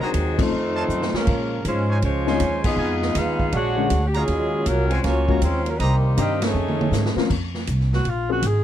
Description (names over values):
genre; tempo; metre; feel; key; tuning
jazz, big band swing; 159 BPM; 4/4; swing 64% on 8ths; Bb minor; A4 = 440 Hz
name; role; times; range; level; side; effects
dark saxophone section; melody; 0.0-7.2 s; Gb3 to F#5; -24 LUFS; left 2 dB; none
bright trombone section; second line; 0.0-7.2 s; Bb2 to F#4; -28 LUFS; right 6 dB; none
warm grand piano; accompaniment; 0.0-8.4 s; D3 to Bb4; -25 LUFS; left 13 dB; none
warm trumpet section; stabs; 0.0-6.3 s; Db4 to C6; -28 LUFS; right 2 dB; none
upright bass; bass; 0.0-8.6 s; Ab1 to Bb2; -23 LUFS; equal; none
swinging big-band drum kit; drums; 0.1-8.5 s; crash cymbal, hi-hat, kick drum, ride cymbal, snare drum, toms; -27 LUFS; right 1 dB; none
breathy alto saxophone; melody; 7.9-8.6 s; F4 to Ab4; -24 LUFS; equal; none
room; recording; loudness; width
little or no reverb; none; -19 LUFS; side -11 dB against mid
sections
0.0-7.3 A section; 7.3-8.6 B section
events
band accent 0.3, 2.6, 6.4; drum fill 0.9-1.3, 6.5-7.3; alto saxophone solo 7.3-8.6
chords
0.0 Cm7b5; 0.5 F7b13; 1.3 Bbm11; 2.8 Fm7b5; 3.5 Bb7alt; 4.3 Ebm11; 5.8 Cm7; 6.5 F7alt; 7.3 Bb7sus2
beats
0.14 0.52 0.89 | 1.27 1.65 2.02 2.40 | 2.78 3.15 3.53 3.91 | 4.28 4.66 5.04 5.41 | 5.79 6.16 6.54 6.92 | 7.29 7.67 8.04 8.42